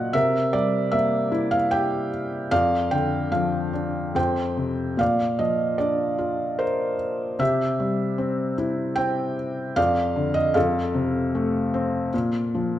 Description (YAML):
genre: classical, lyrical solo piano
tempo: 75 BPM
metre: 3/4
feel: rubato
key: Bb major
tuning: A4 = 440 Hz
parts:
  - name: felt-muted upright piano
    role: solo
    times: 0.0-12.8 s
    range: F2 to G5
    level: -21 LUFS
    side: equal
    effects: none
room: moderate recital hall reverb, RT60 1.3 s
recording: none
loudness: -21 LUFS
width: side -12 dB against mid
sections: 0.0-12.8 A section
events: none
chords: 0.1 C7; 2.5 Dmadd11/F; 4.2 F5; 5.0 Bbadd9; 7.4 C; 9.8 Dm/F; 10.6 F; 12.1 Bb5